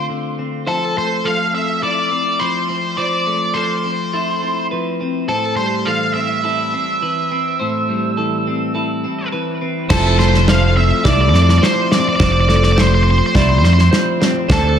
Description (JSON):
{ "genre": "post-rock", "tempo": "104 BPM", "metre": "4/4", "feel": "straight", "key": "F lydian", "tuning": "A4 = 439 Hz", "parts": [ { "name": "octave-fuzz lead guitar", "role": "melody", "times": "0.0-14.8 s", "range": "A4 to F5", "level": "-19 LUFS", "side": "equal", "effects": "distortion, tape echo" }, { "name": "clean electric guitar", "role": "arpeggios", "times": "0.0-14.8 s", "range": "A2 to F4", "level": "-21 LUFS", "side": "left 2 dB", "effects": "wide subtle chorus, tape echo" }, { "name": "electric guitar at the edge of break-up", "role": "arpeggios", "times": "0.7-14.8 s", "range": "A4 to B5", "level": "-25 LUFS", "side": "right 3 dB", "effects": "wide subtle chorus, tape echo" }, { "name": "pedal steel guitar", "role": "sustained chords", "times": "9.9-14.8 s", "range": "F3 to A4", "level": "-27 LUFS", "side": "right 1 dB", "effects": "none" }, { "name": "modern bright fingered electric bass", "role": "bass", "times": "9.9-14.8 s", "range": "F1 to F2", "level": "-13 LUFS", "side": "equal", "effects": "none" }, { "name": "loose indie drum kit", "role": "drums", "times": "9.9-14.6 s", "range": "crash cymbal, kick drum, snare drum", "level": "-18 LUFS", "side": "equal", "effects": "none" } ], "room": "moderate plate reverb, RT60 1.6 s, small room ambience", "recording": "dreamy mix soaked in reverb", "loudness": "-14 LUFS", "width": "side -8 dB against mid", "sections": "0.0-9.9 A section; 9.9-14.8 B section", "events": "none", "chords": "0.0 Dm7; 0.7 Fmaj7; 5.3 Am7; 9.9 Fmaj7" }